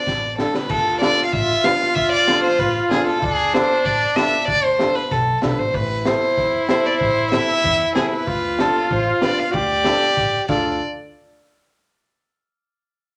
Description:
klezmer; 95 BPM; 2/4; straight; A4 = 440 Hz
warm violin; melody; 0.0-10.8 s; G#4 to F5; -22 LUFS; equal
brilliant trombone; second line; 0.0-10.8 s; D4 to G4; -25 LUFS; equal
upright bass; bass; 0.1-10.8 s; A1 to E2; -32 LUFS; equal
crunchy breakbeat drum kit; drums; 0.1-10.6 s; crash cymbal, kick drum, snare drum; -27 LUFS; equal
warm upright piano; accompaniment; 0.4-10.8 s; C4 to B4; -29 LUFS; equal
wet club reverb, RT60 0.8 s; -19 LUFS; mono
0.7-10.8 A section; 10.8-12.1 B section
drum fill 0.1-0.7, 10.5-10.8
0.0 Dm; 5.7 Am; 8.3 Dm; 10.8 N.C.
0.07 | 0.70 1.33 | 1.96 2.59 | 3.22 3.85 | 4.48 5.11 | 5.74 6.37 | 7.00 7.64 | 8.27 8.90 | 9.53 10.17

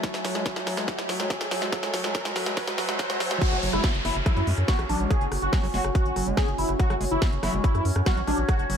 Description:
psychedelic trance; 142 BPM; 4/4; straight; F# minor; A4 = 440 Hz
overtone-sweeping drone; sustained chords; 0.0-8.8 s; F#3 to C#4; -33 LUFS; right 1 dB; chorus, built-in reverb, sidechain pumping
electronic kick drum; drums; 0.0-8.6 s; -24 LUFS; equal
techno drum kit; drums; 0.0-8.8 s; crash cymbal, hi-hat, rim click, snare drum; -31 LUFS; equal; high-pass filter on hats, high-pass filter on snare, high-pass filter on cymbals, high-pass filter on room
riser, swell and downlifter; sound effects; 0.0-6.8 s; -33 LUFS; right 1 dB
warbly tape-like pad; texture; 0.0-8.8 s; F#4 to G#5; -35 LUFS; left 1 dB; chorus, built-in reverb, sidechain pumping
overdriven acid bass; riff; 0.2-8.8 s; F#3 to G#3; -35 LUFS; moving between left 6 dB and right 6 dB; auto-pan, sidechain pumping, digital delay
wide unison lead; melody; 3.4-8.6 s; D4 to G#4; -29 LUFS; equal; phaser, sidechain pumping, tape echo
round analog bass; bass; 3.5-8.8 s; F#1 to F#2; -28 LUFS; equal
light reverb, digital ambience; high-pass filter; -23 LUFS; side -8 dB against mid
0.0-3.4 A section; 3.4-8.8 B section
build-up 0.0-3.4; drum fill 0.0-3.4; riser 0.0-3.4; filter sweep on acid bass 0.0-3.4; swell 2.6-3.4; drop 3.4-8.8
0.0 F#5
| 0.04 0.46 0.88 1.30 | 1.73 2.15 2.57 2.99 | 3.42 3.84 4.26 4.68 | 5.11 5.53 5.95 6.37 | 6.79 7.22 7.64 8.06 | 8.49

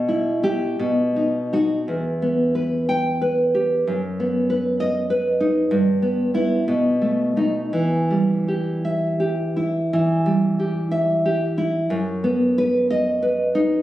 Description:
romantic piece for solo classical guitar; 53-68 BPM (dotted quarters); 6/8; rubato; E minor; A4 = 439 Hz
nylon-string guitar; solo; 0.0-13.8 s; E2 to G5; -18 LUFS; equal
light reverb; recorded on a phone in the room, studio reverb; -18 LUFS; side -14 dB against mid
0.0-9.9 A section; 9.9-13.8 A section
0.0 Em/B; 0.8 B; 1.9 Em; 3.9 B/F#; 5.7 Em/G; 6.7 B7; 7.7 Em; 11.9 B/F#
0.80 | 1.88 2.89 | 3.88 4.80 | 5.70 6.66 | 7.72 8.84 | 9.93 10.91 | 11.90 12.91

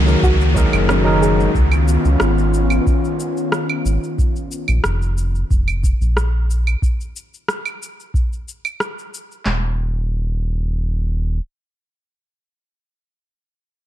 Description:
sunset chillout; 91 BPM; 4/4; straight; A4 = 440 Hz
overdriven tine electric piano; accompaniment; 0.0-1.5 s; Gb3 to Bb4; -21 LUFS; equal; auto-pan, tape echo
airy breathy pad; sustained chords; 0.0-4.2 s; Eb3 to Gb4; -21 LUFS; left 1 dB; chorus
round analog bass; bass; 0.0-11.4 s; Eb1 to Db2; -17 LUFS; equal
downlifter; sound effects; 0.0-4.2 s; -28 LUFS; equal
electronic shaker, claves and rim click; drums; 0.1-9.4 s; -24 LUFS; right 1 dB
soft round pluck; arpeggios; 0.2-1.4 s; Db4 to Ab4; -26 LUFS; right 2 dB
soft vintage rhythm box; drums; 0.2-9.6 s; handclaps, kick drum, snare drum; -18 LUFS; equal; overdrive
light reverb; dark, warm production; -16 LUFS; side -12 dB against mid
0.0-9.5 A section; 9.5-12.1 B section
0.0 Gb69; 1.5 Db9; 4.2 Bb5; 9.5 N.C.
0.23 0.89 | 1.55 2.21 2.87 3.52 | 4.18 4.84 5.50 6.16 | 6.82 7.48 8.14 8.80 | 9.46 10.12 10.78

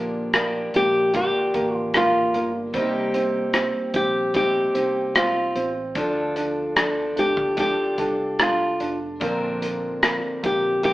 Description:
pop ballad; 74 BPM; 4/4; straight; A4 = 441 Hz
warm grand piano; accompaniment; 0.0-10.9 s; Bb3 to D4; -27 LUFS; right 2 dB
picked steel-string acoustic guitar; arpeggios; 0.0-10.9 s; Bb2 to Bb4; -28 LUFS; left 1 dB
fretless electric bass; bass; 0.0-10.9 s; F1 to D2; -38 LUFS; equal
natural country drum kit; drums; 0.3-10.9 s; hi-hat, kick drum, rim click; -24 LUFS; equal
flamenco guitar; melody; 0.8-10.9 s; F4 to G4; -20 LUFS; equal
moderate stone room reverb, RT60 1.1 s; band playing live in one room, AM radio sound; -20 LUFS; side -16 dB against mid
0.0-10.9 A section
0.0 Gm7/Bb; 2.7 Cm7; 6.0 Dm; 9.2 Bbadd9
0.34 1.15 1.95 | 2.74 3.54 4.34 5.15 | 5.96 6.76 7.58 8.40 | 9.21 10.03 10.84

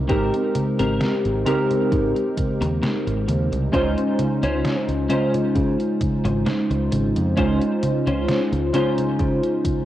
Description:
vaporwave; 66 BPM; 4/4; swing 53% on 16ths; A4 = 441 Hz
warbly lo-fi synth keys; accompaniment; 0.0-9.8 s; Ab3 to C5; -23 LUFS; equal; wide subtle chorus, cassette tape, tape echo
warbly tape-like pad; sustained chords; 0.0-9.8 s; Db3 to C5; -27 LUFS; right 1 dB; chorus, built-in reverb, cassette tape
modern bright fingered electric bass; bass; 0.0-9.4 s; Ab1 to Db3; -24 LUFS; equal
clean electric guitar; riff; 0.1-9.2 s; C4 to C5; -27 LUFS; equal; ensemble chorus, vintage 12-bit sampler grit, cassette tape, tape echo
detuned 8-bit digital drum machine; drums; 0.1-9.8 s; congas, hi-hat, snare drum; -27 LUFS; equal; overdrive, cassette tape
electronic kick drum; drums; 0.1-9.8 s; -25 LUFS; equal; overdrive, cassette tape
moderate spring reverb, RT60 2.5 s; home recording on cassette; -19 LUFS; side -13 dB against mid
0.0-9.8 A section
0.0 Abmaj9; 3.7 Dbmaj7
| 0.10 1.01 1.92 2.83 | 3.74 4.65 5.56 6.46 | 7.37 8.28 9.19

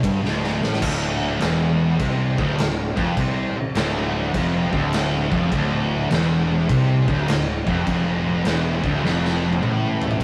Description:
stoner and doom metal; 102 BPM; 4/4; swing 66% on 8ths; D minor; A4 = 435 Hz
thick fuzz guitar; riff; 0.0-10.2 s; D2 to C3; -25 LUFS; equal; distortion
thick fuzz guitar; riff; 0.0-10.2 s; D2 to C3; -29 LUFS; equal
fuzz fingered electric bass; bass; 0.0-10.2 s; D1 to C2; -29 LUFS; equal; overdrive
raw garage drum kit; drums; 0.0-10.2 s; crash cymbal, kick drum, ride cymbal, snare drum, toms; -28 LUFS; equal
heavy high-gain guitar; riff; 0.8-10.2 s; D2 to C3; -31 LUFS; equal; distortion
moderate stone room reverb, RT60 1.3 s; rough rehearsal-room recording, warm saturation; -21 LUFS; mono
0.8-10.2 A section
drum fill 0.2-0.8, 9.0-10.2
0.0 D5; 0.8 Dm
0.23 | 0.82 1.40 1.99 2.58 | 3.17 3.75 4.34 4.93 | 5.51 6.10 6.69 7.27 | 7.86 8.45 9.03 9.62 | 10.20

